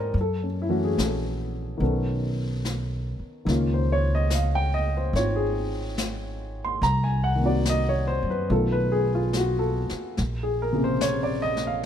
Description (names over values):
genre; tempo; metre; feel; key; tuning
jazz ballad; 72 BPM; 4/4; swing 68% on 8ths; unclear; A4 = 440 Hz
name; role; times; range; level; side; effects
dark baby grand piano; accompaniment; 0.0-11.9 s; C3 to C6; -26 LUFS; left 1 dB; none
upright bass; bass; 0.0-11.8 s; Ab1 to Ab2; -26 LUFS; equal; none
jazz brush drum kit; drums; 0.1-11.9 s; brushed snare drum, hi-hat, snare drum; -33 LUFS; left 3 dB; none
room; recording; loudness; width
little or no reverb; none; -23 LUFS; side -9 dB against mid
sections
0.0-11.9 A section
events
none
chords
0.1 Gbm7; 1.8 B9; 3.5 Db69; 6.8 Cm7b5; 8.5 B7#11; 10.2 Bbm9